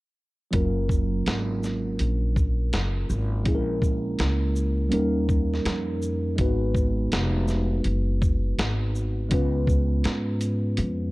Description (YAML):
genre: hip hop, jazz-hop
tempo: 82 BPM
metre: 4/4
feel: swing 65% on 16ths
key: F# major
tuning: A4 = 441 Hz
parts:
  - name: mellow tine electric piano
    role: accompaniment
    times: 0.5-11.1 s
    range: F#3 to B4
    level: -27 LUFS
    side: right 1 dB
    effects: phaser
  - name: upright bass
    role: bass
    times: 0.5-11.1 s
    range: E#1 to G#2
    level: -25 LUFS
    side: equal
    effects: none
  - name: dusty soul sampler-style drum kit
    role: drums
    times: 0.5-11.0 s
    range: hi-hat, kick drum, shaker, snare drum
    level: -26 LUFS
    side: equal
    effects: none
room: little or no reverb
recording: dark, warm production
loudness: -22 LUFS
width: side -20 dB against mid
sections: 0.5-11.1 A section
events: none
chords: 0.5 F#maj7; 3.5 A#m7b5; 4.9 D#7; 6.4 G#m7; 9.3 C#7